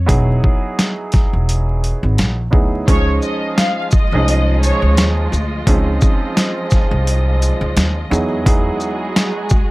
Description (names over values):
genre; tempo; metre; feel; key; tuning
hip hop, boom-bap hip-hop; 86 BPM; 4/4; swing 57% on 16ths; Db major; A4 = 440 Hz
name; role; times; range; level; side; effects
upright bass; bass; 0.0-8.7 s; E1 to F2; -16 LUFS; equal; none
dark grand piano; accompaniment; 0.1-9.4 s; F3 to G#4; -21 LUFS; right 2 dB; high-pass filter, low-pass filter
boom bap sampler-style drum kit; drums; 0.1-9.7 s; hi-hat, kick drum, shaker, snare drum; -15 LUFS; equal; overdrive
warm studio violin section; melody; 2.9-4.9 s; Db5 to F5; -21 LUFS; left 1 dB; high-pass filter, low-pass filter, tape echo
warm studio string section; sustained chords; 2.9-9.7 s; F3 to Eb5; -26 LUFS; equal; high-pass filter, low-pass filter
room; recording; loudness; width
little or no reverb; vinyl crackle; -13 LUFS; side -20 dB against mid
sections
0.0-2.9 A section; 2.9-9.7 B section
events
none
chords
0.0 Emaj9; 2.9 Dbmaj9; 8.1 Emaj9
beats
| 0.09 0.79 1.48 2.18 | 2.88 3.58 4.27 4.97 | 5.67 6.37 7.06 7.76 | 8.46 9.16